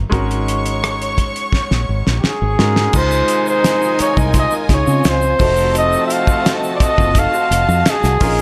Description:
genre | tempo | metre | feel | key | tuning
lush 1970s-style soul | 85 BPM | 4/4 | straight | Db major | A4 = 440 Hz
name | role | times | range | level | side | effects
clear grand piano | accompaniment | 0.0-8.4 s | F3 to Eb5 | -28 LUFS | equal | none
fingered electric bass | bass | 0.0-8.4 s | F1 to Db3 | -21 LUFS | equal | none
warm studio violin section | second line | 0.1-8.4 s | F4 to Db6 | -26 LUFS | equal | none
cloth-damped thuddy drum kit | drums | 0.1-8.4 s | crash cymbal, hi-hat, kick drum, rim click, snare drum | -20 LUFS | equal | none
warm flugelhorn | melody | 2.2-8.4 s | G4 to F5 | -19 LUFS | equal | none
warm horn section | stabs | 2.9-8.4 s | C3 to Ab4 | -26 LUFS | equal | none
tube shaker | percussion | 2.9-8.4 s | none | -35 LUFS | equal | none
electric guitar through a small old amp | riff | 4.2-8.2 s | C4 to Eb5 | -29 LUFS | equal | lush chorus
room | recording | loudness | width
little or no reverb | none | -15 LUFS | mono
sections
0.0-2.9 A section; 2.9-8.4 B section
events
drum fill 1.5-2.9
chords
0.1 Ab7sus4; 2.9 Dbmaj9; 5.4 F7b9

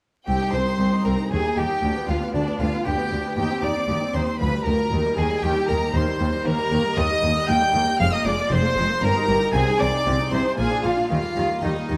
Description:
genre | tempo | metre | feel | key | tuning
classical, baroque-style concerto movement with solo episodes | 116 BPM | 3/4 | straight | C minor, Eb major from 6.5 s | A4 = 440 Hz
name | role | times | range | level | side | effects
rich chamber violin section | melody | 0.3-12.0 s | D5 to G6 | -32 LUFS | equal | none
rich violin | melody | 0.3-12.0 s | D4 to G5 | -28 LUFS | equal | none
rich chamber violin section | second line | 0.3-12.0 s | D4 to G5 | -31 LUFS | equal | none
harpsichord | accompaniment | 0.3-12.0 s | C2 to Eb5 | -31 LUFS | equal | none
warm studio viola section | accompaniment | 0.3-12.0 s | Eb3 to G4 | -33 LUFS | equal | none
rich studio cello section | bass | 0.3-12.0 s | C2 to Eb3 | -30 LUFS | equal | none
rich studio double bass section | bass | 0.3-12.0 s | F1 to Eb2 | -30 LUFS | equal | none
room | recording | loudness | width
wet recital hall reverb, RT60 1.7 s | vinyl crackle | -22 LUFS | mono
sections
0.3-12.0 A section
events
none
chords
0.3 Cm; 1.3 Eb; 1.8 G/D; 3.4 Cm/Eb; 4.4 G7/D; 4.9 Cm/Eb; 6.5 Eb; 8.0 Bb5/F; 9.0 Eb/G; 9.5 Ab/C; 10.6 Bb7; 11.1 Eb

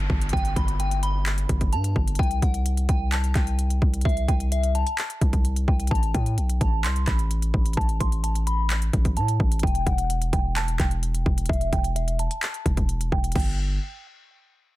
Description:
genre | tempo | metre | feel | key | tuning
hip hop, trap | 129 BPM | 4/4 | half-time | unclear | A4 = 440 Hz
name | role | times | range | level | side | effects
delicate synth tine bell | melody | 0.0-13.6 s | E5 to C6 | -31 LUFS | equal | chorus, phaser, low-pass filter, ping-pong delay
hard-hitting 808-style bass | bass | 0.0-13.8 s | E1 to A2 | -24 LUFS | equal | none
downlifter | sound effects | 0.0-2.2 s | none | -39 LUFS | equal | none
trap drum kit | drums | 0.1-13.5 s | crash cymbal, handclaps, hi-hat, kick drum | -25 LUFS | equal | none
room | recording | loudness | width
little or no reverb | dense, heavily limited modern master | -21 LUFS | side -17 dB against mid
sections
0.0-13.4 A section; 13.4-14.8 B section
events
filter sweep on synth bell 0.0-13.4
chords
0.0 G; 2.2 C5; 5.9 Asus2; 9.6 Em; 13.4 N.C.

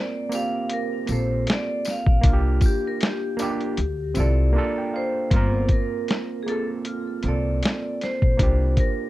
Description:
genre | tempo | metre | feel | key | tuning
lo-fi hip hop | 78 BPM | 4/4 | swing 57% on 16ths | G minor | A4 = 440 Hz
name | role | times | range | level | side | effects
vibraphone with medium hard mallets | melody | 0.0-9.1 s | F4 to F5 | -28 LUFS | equal | low-pass filter, tape echo
overdriven reed electric piano | accompaniment | 0.0-9.1 s | Bb3 to Bb5 | -28 LUFS | right 4 dB | low-pass filter
lo-fi sampler-style drum kit | drums | 0.3-9.0 s | hi-hat, kick drum, snare drum | -21 LUFS | equal | none
tambourine | percussion | 0.3-4.4 s | none | -40 LUFS | left 6 dB | none
upright bass | bass | 1.1-8.7 s | G1 to D2 | -22 LUFS | equal | none
room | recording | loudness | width
light reverb | none | -20 LUFS | side -16 dB against mid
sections
0.0-5.3 A section; 5.3-9.1 B section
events
break 4.5-5.3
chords
0.0 Gm11; 2.2 C7sus4; 3.8 Dm9; 4.5 Bbmaj13; 5.3 Gm11 (rootless); 8.4 C7sus4

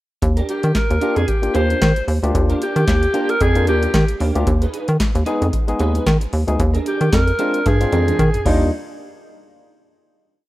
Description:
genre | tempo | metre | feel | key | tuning
early-eighties boogie funk | 113 BPM | 4/4 | swing 56% on 16ths | Eb major | A4 = 442 Hz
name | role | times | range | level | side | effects
electric guitar at the edge of break-up | riff | 0.2-8.6 s | D4 to Cb5 | -28 LUFS | right 5 dB | analog chorus
rubbery square bass | bass | 0.2-8.7 s | D2 to Eb3 | -17 LUFS | equal | none
booming analog drum machine | drums | 0.2-8.7 s | crash cymbal, handclaps, hi-hat, kick drum, snare drum, toms | -21 LUFS | equal | overdrive
growling alto saxophone | melody | 0.5-8.7 s | Eb4 to C5 | -21 LUFS | right 1 dB | slapback echo
barky tine electric piano | accompaniment | 1.0-8.7 s | G3 to Bb4 | -25 LUFS | left 3 dB | overdrive
room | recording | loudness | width
light reverb | rough home demo mix | -15 LUFS | side -16 dB against mid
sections
0.2-8.7 verse; 8.7-10.5 final hit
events
drum fill 7.7-8.7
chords
0.2 Ebmaj7; 4.5 Abm/Eb; 6.6 Bb7/Eb; 8.5 Ebmaj7; 8.7 N.C.

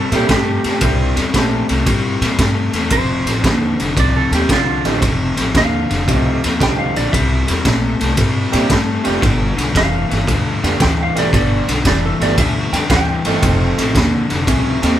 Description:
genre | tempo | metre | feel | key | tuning
electric blues shuffle | 114 BPM | 4/4 | swing 67% on 8ths | C mixolydian | A4 = 441 Hz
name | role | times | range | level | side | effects
clean lap steel guitar | second line | 0.0-13.9 s | F4 to G5 | -22 LUFS | right 3 dB | none
overdriven semi-hollow guitar | riff | 0.0-15.0 s | F2 to A3 | -19 LUFS | left 4 dB | none
upright bass | bass | 0.0-15.0 s | F1 to Bb2 | -20 LUFS | equal | none
bright concert grand piano | accompaniment | 0.1-1.7, 4.8-15.0 s | A3 to A4 | -22 LUFS | right 5 dB | none
raw garage drum kit | drums | 0.1-14.9 s | kick drum, ride cymbal, snare drum | -17 LUFS | right 1 dB | none
room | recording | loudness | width
little or no reverb | band playing live in one room | -13 LUFS | side -11 dB against mid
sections
0.0-15.0 A section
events
electric slide guitar solo 0.0-15.0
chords
0.0 C7; 2.9 F7; 7.1 C7; 9.2 G7; 13.4 F7

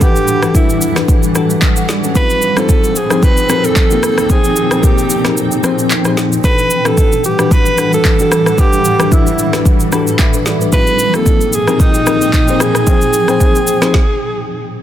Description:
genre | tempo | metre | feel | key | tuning
amapiano | 112 BPM | 4/4 | swing 55% on 16ths | unclear | A4 = 440 Hz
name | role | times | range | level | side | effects
breathy alto saxophone | melody | 0.0-14.5 s | Eb4 to B4 | -15 LUFS | right 2 dB | tape echo
bell-like FM electric piano | accompaniment | 0.0-14.0 s | E3 to B5 | -17 LUFS | left 5 dB | chorus
granular cloud pad | sustained chords | 0.0-13.9 s | A2 to G5 | -18 LUFS | right 1 dB | built-in reverb
deep house drum kit | drums | 0.0-14.1 s | handclaps, kick drum, rim click, shaker, snare drum | -13 LUFS | equal | none
room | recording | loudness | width
digital ambience | dense, heavily limited modern master | -10 LUFS | side -11 dB against mid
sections
0.0-14.8 A section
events
kick muted 5.4-6.4; FM electric piano fill 9.7-10.7; stop 13.9-14.8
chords
0.0 Em11; 2.2 Fm11; 6.4 Em11; 10.7 Fm11

